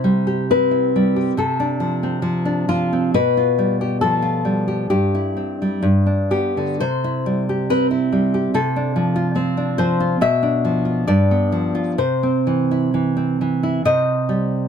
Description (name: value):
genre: romantic piece for solo classical guitar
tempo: 58-73 BPM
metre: 2/4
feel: rubato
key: C major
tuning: A4 = 438 Hz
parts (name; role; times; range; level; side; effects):
- nylon-string guitar; solo; 0.0-14.7 s; G2 to E5; -17 LUFS; equal; none
room: light reverb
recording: close, detailed microphones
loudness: -17 LUFS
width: side -7 dB against mid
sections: 0.0-13.8 A section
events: none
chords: 0.0 C; 1.3 Dm7/C; 3.1 G7/B; 4.9 C/G; 5.8 G; 6.8 C; 8.5 Dm7/C; 10.2 Dm69/B; 11.0 G7; 12.0 C; 13.8 Cm